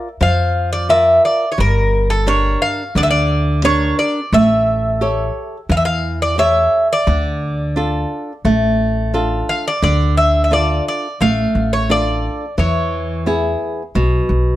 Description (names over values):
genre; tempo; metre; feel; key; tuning
greek folk, Greek bouzouki band; 87 BPM; 4/4; straight; D harmonic minor; A4 = 441 Hz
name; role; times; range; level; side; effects
Greek bouzouki; melody; 0.0-13.2 s; A4 to F5; -16 LUFS; equal; plate reverb
flamenco guitar; accompaniment; 0.0-14.6 s; B2 to D5; -19 LUFS; right 1 dB; none
upright bass; bass; 0.2-14.6 s; G1 to F2; -18 LUFS; equal; none
room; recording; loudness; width
moderate studio reverb, RT60 0.6 s; dark, warm production; -14 LUFS; side -14 dB against mid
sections
0.0-9.8 A section; 9.8-14.6 B section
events
none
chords
0.0 Bb; 1.6 Gm; 4.3 A7; 7.1 Dm; 12.6 E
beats
0.21 0.90 | 1.58 2.27 2.96 3.64 | 4.33 5.01 5.70 6.39 | 7.08 7.76 8.45 9.14 | 9.83 10.51 11.20 11.89 | 12.58 13.27 13.95